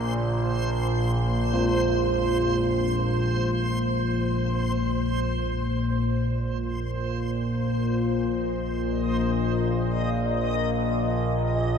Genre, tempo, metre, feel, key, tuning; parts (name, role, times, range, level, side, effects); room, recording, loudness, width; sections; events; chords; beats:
ambient; free time; A4 = 440 Hz
old church bells; arpeggios; 0.0-7.3 s; Bb2 to F3; -31 LUFS; equal; ping-pong delay, shimmer reverb
analog drone; drone; 0.0-11.8 s; Bb1 to Bb2; -24 LUFS; equal; chorus
backwards swelling texture; texture; 0.0-11.8 s; C5 to Eb5; -30 LUFS; right 1 dB; built-in reverb, shimmer reverb
wet cathedral reverb, RT60 6.8 s; dark, warm production; -23 LUFS; side -7 dB against mid
0.0-8.3 A section; 8.3-11.8 B section
0.0 F5/Bb; 8.3 Bbsus4
free time